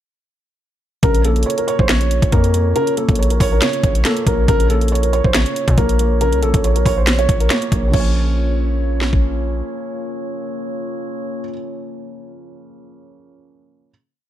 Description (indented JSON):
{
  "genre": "hip hop, trap",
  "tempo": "139 BPM",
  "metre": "4/4",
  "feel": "half-time",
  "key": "Bb harmonic minor",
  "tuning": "A4 = 440 Hz",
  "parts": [
    { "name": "dark concert grand piano", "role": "melody", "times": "1.0-9.2 s", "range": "A4 to Db5", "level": "-21 LUFS", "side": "left 1 dB", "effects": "low-pass filter, ping-pong delay" },
    { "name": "felt-muted upright piano", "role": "accompaniment", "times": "1.0-13.9 s", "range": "Db3 to Db5", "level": "-25 LUFS", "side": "right 5 dB", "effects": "low-pass filter" },
    { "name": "glass harmonica", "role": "sustained chords", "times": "1.0-11.5 s", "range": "Bb3 to Db5", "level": "-28 LUFS", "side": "left 1 dB", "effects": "none" },
    { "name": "distorted 808-style bass", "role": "bass", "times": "1.0-9.6 s", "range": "Bb1 to Bb2", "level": "-17 LUFS", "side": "equal", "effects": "distortion" },
    { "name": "trap drum kit", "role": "drums", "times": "1.0-9.2 s", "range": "crash cymbal, finger snaps, hi-hat, kick drum, snare drum", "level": "-18 LUFS", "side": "equal", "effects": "overdrive" }
  ],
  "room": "small room ambience",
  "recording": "none",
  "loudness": "-14 LUFS",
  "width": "side -12 dB against mid",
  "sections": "1.0-7.9 verse; 7.9-11.4 final chord",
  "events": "none",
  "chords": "1.0 Bbm"
}